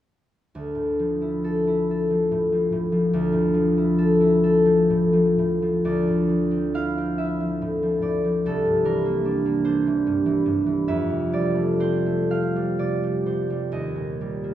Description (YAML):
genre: classical, solo harp piece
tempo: 40-50 BPM (dotted quarters)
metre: 6/8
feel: rubato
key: D minor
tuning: A4 = 439 Hz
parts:
  - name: concert harp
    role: solo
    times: 0.5-14.5 s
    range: C2 to F5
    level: -20 LUFS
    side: equal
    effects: none
room: wet recital hall reverb, RT60 1.6 s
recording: recorded in a church or concert hall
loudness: -20 LUFS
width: side -12 dB against mid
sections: 0.5-5.9 A section; 5.9-14.5 B section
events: none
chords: 0.5 Dmadd9; 5.9 Dm9; 8.4 C9; 10.9 Fmaj9; 13.7 Eb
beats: | 0.54 1.87 | 3.13 4.43 | 5.86 7.17 | 8.42 9.64 | 10.87 12.29 | 13.72